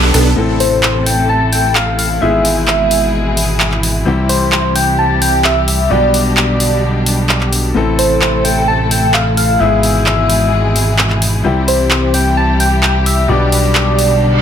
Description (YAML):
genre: EDM, festival progressive house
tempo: 130 BPM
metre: 4/4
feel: straight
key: A minor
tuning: A4 = 440 Hz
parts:
  - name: rich studio string section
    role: sustained chords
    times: 0.0-14.4 s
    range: B2 to A4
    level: -19 LUFS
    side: equal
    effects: low-pass filter
  - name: fat analog bass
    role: bass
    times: 0.0-14.4 s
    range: G#1 to C2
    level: -16 LUFS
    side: equal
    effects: none
  - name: big-room dance drum kit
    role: drums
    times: 0.0-14.1 s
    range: handclaps, hi-hat, rim click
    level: -17 LUFS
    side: equal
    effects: none
  - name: bright baby grand piano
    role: accompaniment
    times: 0.4-14.4 s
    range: G#2 to A4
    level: -19 LUFS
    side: left 4 dB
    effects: digital delay
  - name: soft struck synth lead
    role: melody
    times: 0.6-14.4 s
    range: C5 to A5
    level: -16 LUFS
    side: equal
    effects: chorus, phaser, digital delay
  - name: reverse cymbal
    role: sound effects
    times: 14.3-14.4 s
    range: none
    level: -20 LUFS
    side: right 5 dB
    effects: none
room: moderate digital room reverb, RT60 1.0 s, digital ambience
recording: none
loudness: -10 LUFS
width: side -8 dB against mid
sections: 0.4-14.4 A section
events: reverse cymbal 14.3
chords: 0.4 Am; 2.2 E/G#; 4.1 C; 5.9 G/B; 7.8 Am; 9.6 E/G#; 11.4 C; 13.3 G/B